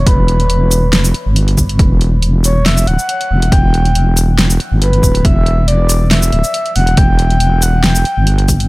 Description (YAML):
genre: deep dubstep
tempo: 139 BPM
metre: 4/4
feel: swing 54% on 16ths, half-time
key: E dorian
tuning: A4 = 442 Hz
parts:
  - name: breathy flute-like synth lead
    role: melody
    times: 0.0-8.5 s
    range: B4 to G5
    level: -18 LUFS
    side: equal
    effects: chorus, dub echo
  - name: wobble bass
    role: bass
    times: 0.0-8.7 s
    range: D1 to G1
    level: -12 LUFS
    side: equal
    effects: chorus
  - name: deep house drum kit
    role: drums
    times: 0.1-8.7 s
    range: hi-hat, shaker, snare drum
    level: -16 LUFS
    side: equal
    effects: overdrive, small room ambience
  - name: electronic kick drum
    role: drums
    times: 0.1-8.6 s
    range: none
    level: -12 LUFS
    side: equal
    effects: overdrive, small room ambience
room: little or no reverb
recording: none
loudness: -10 LUFS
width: side -21 dB against mid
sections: 0.0-8.7 A section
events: none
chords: 0.0 Em